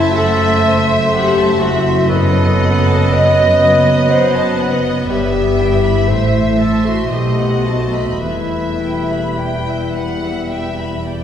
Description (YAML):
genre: classical, slow romantic movement for symphony orchestra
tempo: 51-63 BPM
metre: 3/4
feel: rubato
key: E minor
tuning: A4 = 439 Hz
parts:
  - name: rich symphonic violin section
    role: melody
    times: 0.0-11.2 s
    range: D5 to G5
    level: -24 LUFS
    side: left 1 dB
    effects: none
  - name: clear clarinet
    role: second line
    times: 0.0-11.0 s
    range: E4 to D#5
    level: -25 LUFS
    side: right 1 dB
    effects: none
  - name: large flute ensemble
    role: second line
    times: 0.0-11.2 s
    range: D#5 to E5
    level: -25 LUFS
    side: left 2 dB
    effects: none
  - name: mellow cor anglais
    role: second line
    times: 0.0-11.2 s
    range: B4 to C5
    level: -24 LUFS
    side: left 1 dB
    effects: none
  - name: warm symphonic violin section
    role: second line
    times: 0.0-11.2 s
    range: B4 to C6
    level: -27 LUFS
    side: left 2 dB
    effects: none
  - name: mellow bassoon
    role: accompaniment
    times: 0.0-11.2 s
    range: F#3 to A3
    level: -26 LUFS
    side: equal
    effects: none
  - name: rich symphonic viola section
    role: accompaniment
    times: 0.0-11.2 s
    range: G3 to B3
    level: -24 LUFS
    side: right 1 dB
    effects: none
  - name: dark French horn section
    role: sustained chords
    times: 0.0-11.0 s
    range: E4 to D#5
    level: -18 LUFS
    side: left 2 dB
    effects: none
  - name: concert harp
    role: arpeggios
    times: 0.0-11.2 s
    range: F#2 to B5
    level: -25 LUFS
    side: left 4 dB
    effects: none
  - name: warm symphonic cello section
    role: bass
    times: 0.0-11.2 s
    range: E2 to B2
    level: -21 LUFS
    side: right 2 dB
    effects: none
  - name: warm symphonic double bass section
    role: bass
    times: 0.0-11.2 s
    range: E1 to B1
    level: -20 LUFS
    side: right 2 dB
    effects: none
room: wet scoring stage reverb, RT60 1.6 s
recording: heard from further back in the room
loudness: -12 LUFS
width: side -9 dB against mid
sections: 0.0-11.2 A section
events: none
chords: 0.0 F#m7b5; 2.1 B7/F#; 5.1 Em/G; 6.1 Am; 7.1 B7b9; 8.2 Em